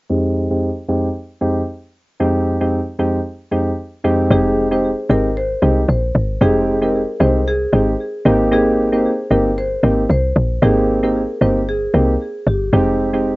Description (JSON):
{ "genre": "afrobeats", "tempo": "114 BPM", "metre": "4/4", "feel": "swing 55% on 16ths", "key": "unclear", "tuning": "A4 = 440 Hz", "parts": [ { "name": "soft electric-piano-like synth keys", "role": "accompaniment", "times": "0.1-13.3 s", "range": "F2 to G4", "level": "-16 LUFS", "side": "equal", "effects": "chorus, low-pass filter, cassette tape" }, { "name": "marimba with medium mallets", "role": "melody", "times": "4.3-12.6 s", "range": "G4 to C5", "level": "-22 LUFS", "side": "left 1 dB", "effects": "analog delay" }, { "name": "woody log drum bass", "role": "bass", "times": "4.3-13.4 s", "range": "F1 to C2", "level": "-18 LUFS", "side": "equal", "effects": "none" } ], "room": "light reverb", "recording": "home recording on cassette, nothing above 7.6 kHz", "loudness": "-14 LUFS", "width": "side -21 dB against mid", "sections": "0.1-4.3 A section; 4.3-13.4 B section", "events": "filter sweep on synth keys 0.1-4.3", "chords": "0.1 Fm9; 8.3 Abmaj9; 12.7 Fm9", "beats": "| 0.10 0.62 1.15 1.68 | 2.20 2.73 3.25 3.78 | 4.31 4.83 5.36 5.89 | 6.41 6.94 7.46 7.99 | 8.52 9.04 9.57 10.10 | 10.62 11.15 11.68 12.20 | 12.73 13.25" }